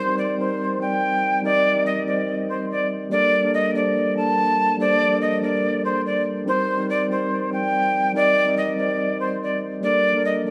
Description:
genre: hip hop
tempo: 143 BPM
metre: 4/4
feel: half-time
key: unclear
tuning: A4 = 440 Hz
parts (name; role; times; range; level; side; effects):
- jazz flute; melody; 0.0-10.5 s; C5 to A5; -23 LUFS; equal; digital delay
- mellow tine electric piano; accompaniment; 0.0-10.5 s; G3 to Eb5; -26 LUFS; equal; none
room: moderate concert hall reverb, RT60 2.1 s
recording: studio reverb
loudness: -21 LUFS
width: mono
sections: 0.0-9.8 A section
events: none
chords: 0.0 Cm7; 3.1 Gmadd9; 6.5 Cm7; 9.8 Gmadd9

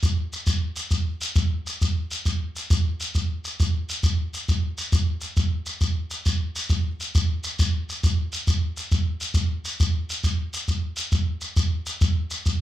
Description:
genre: southern african traditional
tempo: 135 BPM (dotted quarters)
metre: 12/8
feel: straight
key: none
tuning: none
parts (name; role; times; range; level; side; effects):
- shekere; percussion; 0.0-12.6 s; none; -22 LUFS; equal; none
room: wet small room reverb, RT60 0.5 s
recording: close, detailed microphones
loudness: -22 LUFS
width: side -13 dB against mid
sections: 0.0-7.1 A section; 7.1-12.6 B section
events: none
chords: none

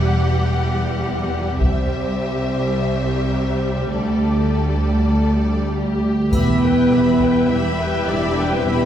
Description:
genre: cinematic, epic orchestral film score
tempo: 103 BPM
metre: 4/4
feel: straight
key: E minor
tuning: A4 = 440 Hz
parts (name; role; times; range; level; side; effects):
- warm symphonic violin section; second line; 0.0-8.9 s; G4 to F#5; -27 LUFS; left 3 dB; none
- warm symphonic viola section; accompaniment; 0.0-8.9 s; G3 to G5; -25 LUFS; equal; none
- dark symphonic double bass section; bass; 0.0-8.9 s; E1 to D2; -23 LUFS; right 1 dB; none
- rich chamber cello section; bass; 0.0-8.9 s; C2 to E2; -22 LUFS; right 1 dB; none
- taiko ensemble; drums; 1.6-2.7, 6.3-7.5 s; none; -23 LUFS; equal; none
- mellow French horn section; sustained chords; 5.7-8.9 s; G3 to E4; -18 LUFS; equal; none
- warm studio violin section; melody; 6.3-8.9 s; G5 to B5; -30 LUFS; left 2 dB; none
- rich symphonic string section; sustained chords; 6.3-8.9 s; G3 to E5; -27 LUFS; left 1 dB; none
- warm trombone section; sustained chords; 6.3-8.9 s; E3 to G3; -28 LUFS; right 2 dB; none
- triangle; percussion; 6.3-7.5 s; none; -42 LUFS; left 2 dB; none
room: wet scoring stage reverb, RT60 1.6 s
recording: heard from further back in the room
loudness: -16 LUFS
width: side -10 dB against mid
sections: 0.0-6.3 A section; 6.3-8.9 B section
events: build-up 0.0-6.3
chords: 0.0 Emadd9; 1.6 C; 3.9 Gsus2/D; 6.3 Em

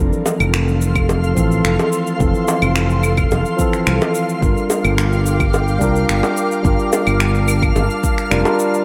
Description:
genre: sunset chillout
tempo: 108 BPM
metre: 4/4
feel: straight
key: G dorian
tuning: A4 = 440 Hz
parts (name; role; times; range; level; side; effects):
- bright tine electric piano; accompaniment; 0.0-8.8 s; E3 to Bb4; -22 LUFS; equal; low-pass filter, delay
- ethereal airy pad; sustained chords; 0.0-8.8 s; A4 to D6; -27 LUFS; equal; ensemble chorus, built-in reverb
- fretless electric bass; bass; 0.0-8.4 s; F1 to C2; -20 LUFS; equal; none
- twinkling granular texture; texture; 0.5-8.8 s; F5 to F6; -30 LUFS; equal; built-in reverb
- electronic shaker, claves and finger snaps; drums; 0.1-8.8 s; none; -26 LUFS; equal; none
- bongos; percussion; 0.3-8.6 s; none; -24 LUFS; equal; none
- electronic kick drum; drums; 1.0-8.2 s; none; -22 LUFS; equal; none
room: light reverb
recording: none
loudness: -16 LUFS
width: mono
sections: 0.0-8.8 A section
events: filter sweep on tine electric piano 0.0-8.8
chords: 0.0 Fmaj7; 4.4 Gm7

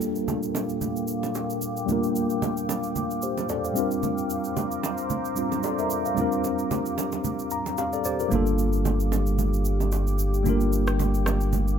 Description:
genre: amapiano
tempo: 112 BPM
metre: 4/4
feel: swing 55% on 16ths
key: G minor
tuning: A4 = 439 Hz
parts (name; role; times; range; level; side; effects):
- mellow tine electric piano; accompaniment; 0.0-11.8 s; G3 to Bb5; -27 LUFS; left 1 dB; medium stereo tremolo, low-pass filter
- deep dark ambient pad; sustained chords; 0.0-11.8 s; Bb3 to D6; -31 LUFS; equal; chorus, built-in reverb, low-pass filter
- electronic shaker and rim click; drums; 0.0-11.8 s; none; -36 LUFS; right 4 dB; none
- bongos and congas; percussion; 0.3-11.7 s; none; -31 LUFS; right 6 dB; none
- warm sub bass; bass; 8.3-11.8 s; G1; -24 LUFS; equal; none
room: light reverb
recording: none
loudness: -23 LUFS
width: side -8 dB against mid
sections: 0.0-11.8 A section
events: filter sweep 0.0-11.8; tine electric piano fill 7.2-8.3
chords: 0.0 Gm7; 3.8 C9sus4; 8.3 Gm7

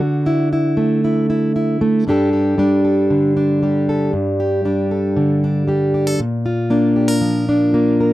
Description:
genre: folk, solo fingerstyle acoustic guitar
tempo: 116 BPM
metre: 4/4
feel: straight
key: unclear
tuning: A4 = 440 Hz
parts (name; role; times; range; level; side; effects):
- fingerpicked plugged-in steel-string acoustic guitar; solo; 0.0-8.1 s; G2 to Bb4; -14 LUFS; equal; none
room: light reverb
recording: dry, close 1970s-style studio recording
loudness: -14 LUFS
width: side -16 dB against mid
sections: 0.0-2.1 A section; 2.1-8.1 B section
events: none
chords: 0.0 Dadd9; 2.1 Gsus2; 6.2 Bb

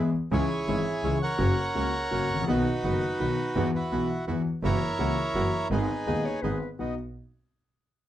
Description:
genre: tango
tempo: 167 BPM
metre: 3/4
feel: rubato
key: B major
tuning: A4 = 440 Hz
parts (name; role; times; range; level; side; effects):
- warm concert grand piano; accompaniment; 0.0-6.9 s; D#1 to G#4; -28 LUFS; left 2 dB; none
- bandoneon; stabs; 0.0-6.9 s; G#3 to G#4; -39 LUFS; right 3 dB; none
- clear double bass; bass; 0.0-6.9 s; F#1 to E2; -31 LUFS; right 2 dB; none
- bandoneon; melody; 0.3-6.4 s; D#4 to F#5; -29 LUFS; right 1 dB; none
- warm clarinet; second line; 6.1-7.0 s; B4 to D#5; -36 LUFS; left 6 dB; none
room: moderate club reverb, RT60 0.5 s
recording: dark, warm production, nothing above 10.5 kHz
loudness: -25 LUFS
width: side -12 dB against mid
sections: 0.0-6.8 A section; 6.8-7.9 B section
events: none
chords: 0.3 C#m; 1.4 F#; 2.5 B; 3.6 Esus2; 4.6 F#7; 5.7 G#m; 6.8 B

